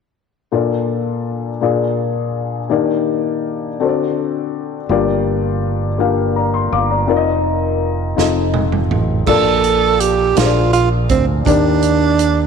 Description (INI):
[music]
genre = slow gospel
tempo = 55 BPM (dotted quarters)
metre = 6/8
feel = straight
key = Bb major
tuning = A4 = 441 Hz
[part]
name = dark upright piano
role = accompaniment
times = 0.5-12.5 s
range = G2 to D6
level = -17 LUFS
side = left 6 dB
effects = none
[part]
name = fingered electric bass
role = bass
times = 4.9-12.5 s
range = F1 to Eb2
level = -19 LUFS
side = right 3 dB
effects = none
[part]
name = natural country drum kit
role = drums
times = 8.2-12.4 s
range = crash cymbal, hi-hat, kick drum, snare drum, toms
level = -21 LUFS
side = right 6 dB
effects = none
[part]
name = warm tenor saxophone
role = melody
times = 9.3-12.5 s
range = C4 to A4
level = -15 LUFS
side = right 7 dB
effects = none
[sound]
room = moderate echo chamber reverb, RT60 2.2 s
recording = 1960s-style stereo with parts hard left and right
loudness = -14 LUFS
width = side -6 dB against mid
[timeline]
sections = 0.5-9.3 A section; 9.3-12.5 B section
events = drum fill 8.2-9.3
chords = 0.5 Bbmaj7; 1.6 Bb7; 2.7 Ebmaj7; 3.8 D7; 4.9 Gm7; 7.1 F7sus4; 8.2 F7; 9.3 Bbmaj7; 10.4 Bb7; 11.5 Ebmaj7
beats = | 0.51 1.61 | 2.71 3.80 | 4.90 5.99 | 7.09 8.18 | 9.27 10.37 | 11.46